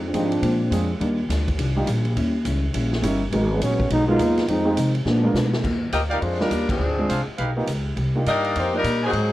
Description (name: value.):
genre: jazz, big band swing.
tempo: 207 BPM.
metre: 4/4.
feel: swing 62% on 8ths.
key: Eb major.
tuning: A4 = 441 Hz.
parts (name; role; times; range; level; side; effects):
vintage hollow-body jazz guitar; accompaniment; 0.0-5.6 s; F2 to F4; -30 LUFS; left 3 dB; none.
upright bass; bass; 0.0-9.3 s; G1 to C3; -23 LUFS; equal; none.
warm trombone section; second line; 0.1-0.9, 3.5-5.5 s; Eb3 to F4; -22 LUFS; right 1 dB; none.
warm baby grand piano; accompaniment; 0.1-8.8 s; G3 to Bb4; -26 LUFS; right 1 dB; none.
swinging big-band drum kit; drums; 0.1-9.2 s; crash cymbal, hi-hat, kick drum, ride cymbal, snare drum; -30 LUFS; equal; none.
bright saxophone section; melody; 5.9-9.3 s; F3 to Eb5; -23 LUFS; left 2 dB; none.
clear trumpet section; stabs; 6.1-9.1 s; D4 to Ab5; -29 LUFS; equal; none.
room: light reverb.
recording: worn, warbling old tape, cassette tape, warbly pitch drift.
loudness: -19 LUFS.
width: side -15 dB against mid.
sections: 0.0-5.6 A section; 5.6-9.3 B section.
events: trombone section solo 0.0-5.6; drum fill 5.1-5.6; band accent 6.7.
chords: 0.4 Bb7; 1.0 Ebmaj9; 2.2 Eb7b9; 3.3 Abm7; 4.5 Fm7; 5.1 Bb7b9; 5.6 Ebmaj9; 6.8 Dm7b5; 7.4 G7alt; 8.0 Cm11.